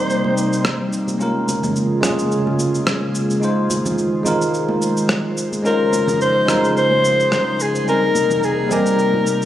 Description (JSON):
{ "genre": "sunset chillout", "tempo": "108 BPM", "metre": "4/4", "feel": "swing 55% on 16ths", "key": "F minor", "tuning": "A4 = 440 Hz", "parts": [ { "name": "breathy soprano saxophone", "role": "melody", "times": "0.0-0.9, 5.7-9.5 s", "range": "Ab4 to C5", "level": "-18 LUFS", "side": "left 2 dB", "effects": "ping-pong delay" }, { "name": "bell-like tine electric piano", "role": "accompaniment", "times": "0.0-9.5 s", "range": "G3 to C5", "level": "-21 LUFS", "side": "right 1 dB", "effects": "auto-pan, ping-pong delay" }, { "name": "airy breathy pad", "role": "sustained chords", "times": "0.0-9.5 s", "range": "C3 to C5", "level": "-22 LUFS", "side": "equal", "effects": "chorus" }, { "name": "electronic cabasa and rim click", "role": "drums", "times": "0.1-9.5 s", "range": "none", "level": "-24 LUFS", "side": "equal", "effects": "overdrive" }, { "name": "congas", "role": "percussion", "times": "0.2-9.2 s", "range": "none", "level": "-28 LUFS", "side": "right 2 dB", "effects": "none" } ], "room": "moderate lush hall reverb, RT60 2.4 s", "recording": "recorded on a phone in the room, club reverb", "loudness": "-16 LUFS", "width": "side -12 dB against mid", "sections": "0.0-9.5 A section", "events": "none", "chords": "0.0 Cm7; 1.2 Db6; 3.4 Fm7; 5.6 Eb13sus4; 7.9 Cm7" }